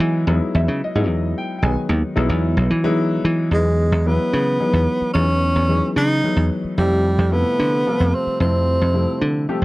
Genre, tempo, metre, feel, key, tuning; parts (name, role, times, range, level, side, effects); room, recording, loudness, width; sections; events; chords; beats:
jazz; 74 BPM (dotted quarters); 6/8; straight; A4 = 440 Hz
clear concert grand piano; accompaniment; 0.0-9.6 s; C3 to G#5; -23 LUFS; left 2 dB
dry thumbed slap bass; bass; 0.0-9.6 s; B1 to E3; -18 LUFS; equal
breathy tenor saxophone; melody; 3.5-9.4 s; G3 to D#4; -20 LUFS; right 1 dB
light reverb; dry, close 1970s-style studio recording; -16 LUFS; side -19 dB against mid
0.0-3.5 A section; 3.5-9.6 B section
grand piano fill 0.0
0.0 Emaj7; 3.5 Emaj9; 6.8 Fmaj9
| 0.28 1.09 | 1.91 2.72 | 3.53 4.34 | 5.16 5.97 | 6.78 7.59 | 8.40 9.21